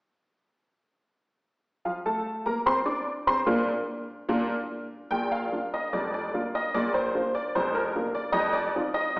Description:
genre	ragtime piano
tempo	74 BPM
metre	2/4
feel	straight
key	Bb major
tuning	A4 = 440 Hz
part	honky-tonk upright piano	solo	1.9-9.2 s	F1 to D6	-25 LUFS	equal	none
room	wet recital hall reverb, RT60 1.6 s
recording	recorded in a church or concert hall, small speaker sound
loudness	-25 LUFS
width	side -28 dB against mid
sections	1.9-5.1 A section; 5.1-9.2 B section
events	none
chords	1.9 Bb; 8.4 F7(no3)

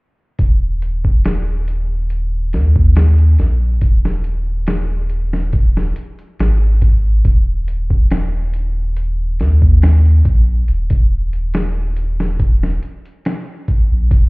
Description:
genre	trip hop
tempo	70 BPM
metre	4/4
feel	straight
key	unclear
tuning	A4 = 440 Hz
part	soft dub sub bass	bass	0.4-14.3 s	Eb1 to Eb2	-14 LUFS	equal	none
part	dusty soul sampler-style drum kit	drums	0.4-14.3 s	hi-hat, kick drum, snare drum	-16 LUFS	equal	none
room	little or no reverb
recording	heard muffled through a wall, club reverb, EQ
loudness	-13 LUFS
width	side -28 dB against mid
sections	0.4-14.3 A section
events	none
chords	none

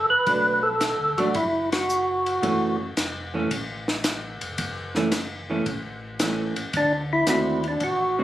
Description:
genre	soul jazz organ trio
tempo	111 BPM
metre	4/4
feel	swing 69% on 8ths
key	F# minor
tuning	A4 = 440 Hz
part	percussive tonewheel organ	melody	0.0-2.8, 6.8-8.2 s	D4 to B4	-21 LUFS	equal	slow rotary speaker, overdrive
part	mellow tonewheel organ	bass	0.0-8.2 s	E#1 to D#2	-36 LUFS	equal	overdrive, chorus vibrato, slow rotary speaker
part	vintage hollow-body jazz guitar	accompaniment	0.3-8.2 s	D3 to F#4	-25 LUFS	right 2 dB	none
part	compact cocktail drum kit	drums	0.3-8.0 s	hi-hat, kick drum, ride cymbal, snare drum	-29 LUFS	left 1 dB	none
room	light reverb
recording	recorded on a phone in the room, club reverb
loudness	-22 LUFS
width	side -13 dB against mid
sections	0.0-8.2 A section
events	band accent 1.6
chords	0.0 Bm7; 2.4 F#m7; 6.7 D7

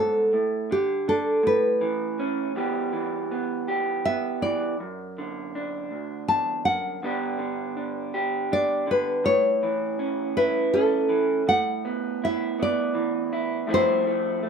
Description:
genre	acoustic folk-pop ballad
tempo	54 BPM (dotted quarters)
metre	6/8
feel	straight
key	unclear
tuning	A4 = 440 Hz
part	nylon-string guitar	melody	0.0-14.5 s	G4 to A5	-23 LUFS	left 1 dB	none
part	electric guitar through a small old amp	accompaniment	0.0-14.5 s	D2 to G4	-27 LUFS	right 4 dB	none
room	moderate studio reverb, RT60 0.6 s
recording	minimal, uncompressed stereo recording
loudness	-22 LUFS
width	side -6 dB against mid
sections	0.0-11.5 A section; 11.5-14.5 B section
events	none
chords	0.3 Asus4; 1.4 A; 2.6 Em; 4.8 D/F#; 7.0 G; 9.2 A; 11.5 Asus2; 13.7 Fmaj7/A

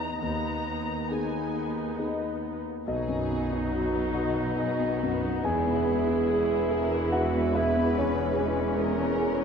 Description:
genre	cinematic, emotional film score for orchestra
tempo	70 BPM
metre	3/4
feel	uneven beats, rubato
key	B major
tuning	A4 = 440 Hz
part	muted studio violin section	melody	0.0-9.4 s	E4 to A#5	-37 LUFS	left 2 dB	none
part	muted studio viola section	accompaniment	0.0-9.4 s	E3 to D#4	-35 LUFS	right 3 dB	none
part	warm concert grand piano	accompaniment	0.0-9.4 s	B1 to G#5	-30 LUFS	left 2 dB	none
part	concert harp	arpeggios	0.0-9.4 s	E2 to G#5	-34 LUFS	left 6 dB	none
part	muted studio cello section	bass	0.0-9.4 s	D#2 to B2	-35 LUFS	right 4 dB	none
part	muted studio violin section	second line	2.9-9.4 s	B3 to E4	-34 LUFS	left 3 dB	none
part	warm clarinet	second line	2.9-9.4 s	C#4 to G#4	-32 LUFS	right 4 dB	none
part	muted studio double bass section	bass	2.9-9.4 s	E1 to B1	-35 LUFS	right 4 dB	none
room	wet scoring stage reverb, RT60 2.0 s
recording	minimal, uncompressed stereo recording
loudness	-25 LUFS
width	side -6 dB against mid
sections	0.0-2.9 A section; 2.9-9.4 B section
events	none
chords	0.2 G#m/D#; 2.9 B; 5.5 E; 8.0 C#m/E

